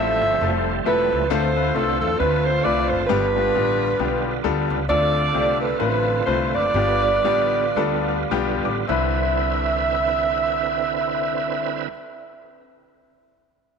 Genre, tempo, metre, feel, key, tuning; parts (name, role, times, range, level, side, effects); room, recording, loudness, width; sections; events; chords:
uptempo gospel; 100-134 BPM; 4/4; swing 59% on 8ths; C major; A4 = 441 Hz
mellow saxophone section; melody; 0.0-11.9 s; D4 to E5; -21 LUFS; right 2 dB
clear grand piano; accompaniment; 0.0-11.9 s; C2 to D6; -25 LUFS; left 13 dB
bright tonewheel organ; sustained chords; 0.0-11.9 s; D3 to B4; -27 LUFS; right 13 dB; fast rotary speaker, overdrive, chorus vibrato
upright bass; bass; 0.0-11.9 s; E1 to E2; -27 LUFS; equal
moderate plate reverb, RT60 3.0 s; 1960s-style stereo with parts hard left and right; -18 LUFS; side -6 dB against mid
0.0-4.9 A section; 4.9-8.9 B section; 8.9-13.7 C section
slowing down 4.9-8.9; grand piano fill 7.8-8.9
0.0 Fmaj7; 1.3 Dm7; 3.1 G7; 4.9 Dm7; 6.7 G7; 8.9 Cmaj9